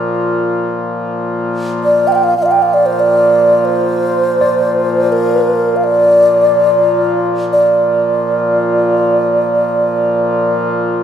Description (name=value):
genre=world meditative, free-time meditation music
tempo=free time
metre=none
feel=none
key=Bb major pentatonic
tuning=A4 = 440 Hz
part: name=hand-pumped harmonium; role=drone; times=0.0-11.0 s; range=Bb2 to F3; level=-16 LUFS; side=left 1 dB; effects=none
part: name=low xiao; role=melody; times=1.8-10.7 s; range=Bb4 to G5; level=-11 LUFS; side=right 1 dB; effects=tape echo
part: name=tine electric piano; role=texture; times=4.4-11.0 s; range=D5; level=-24 LUFS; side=left 2 dB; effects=none
room=wet recital hall reverb, RT60 1.6 s, small room ambience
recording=none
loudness=-11 LUFS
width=side -9 dB against mid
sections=0.0-11.0 A section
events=none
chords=none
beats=free time